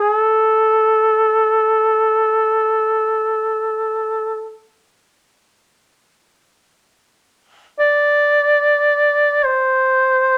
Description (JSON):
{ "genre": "caucasian folk", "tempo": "free time", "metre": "none", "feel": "none", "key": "A minor", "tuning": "A4 = 440 Hz", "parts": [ { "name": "mellow duduk", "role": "solo", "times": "0.0-10.4 s", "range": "A4 to D5", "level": "-16 LUFS", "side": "equal", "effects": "none" } ], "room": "moderate studio reverb, RT60 0.7 s", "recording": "none", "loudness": "-16 LUFS", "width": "mono", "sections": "0.0-10.4 A section", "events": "none", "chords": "none" }